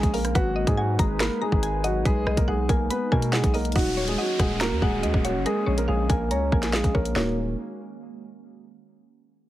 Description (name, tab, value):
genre	hip hop, drill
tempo	141 BPM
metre	4/4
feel	half-time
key	Eb minor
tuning	A4 = 440 Hz
part	dark baby grand piano	melody	0.0-7.4 s	Gb3 to Db5	-27 LUFS	right 1 dB	low-pass filter, digital delay
part	mallet-like synth pluck	accompaniment	0.0-7.4 s	Eb4 to Db6	-32 LUFS	left 2 dB	chorus, low-pass filter
part	warbly tape-like pad	sustained chords	0.0-7.4 s	Eb3 to Cb5	-34 LUFS	left 1 dB	chorus, built-in reverb, phaser, low-pass filter
part	hard-hitting 808-style bass	bass	0.0-7.6 s	Eb1 to B2	-27 LUFS	equal	none
part	drill drum kit	drums	0.0-7.3 s	handclaps, hi-hat, kick drum, rim click, snare drum	-24 LUFS	equal	none
part	downlifter	sound effects	3.8-7.2 s	none	-35 LUFS	equal	none
room	little or no reverb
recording	heavily compressed radio sound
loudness	-21 LUFS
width	side -14 dB against mid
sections	0.0-3.8 A section; 3.8-7.2 B section; 7.2-8.9 C section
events	filter sweep 3.8-7.2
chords	0.4 Abmadd9; 2.1 B6; 3.8 Ebm7; 5.5 Bbm7; 7.2 Ebm7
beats	| 0.35 0.78 1.20 1.63 | 2.05 2.48 2.90 3.33 | 3.76 4.18 4.61 5.03 | 5.46 5.88 6.31 6.73 | 7.16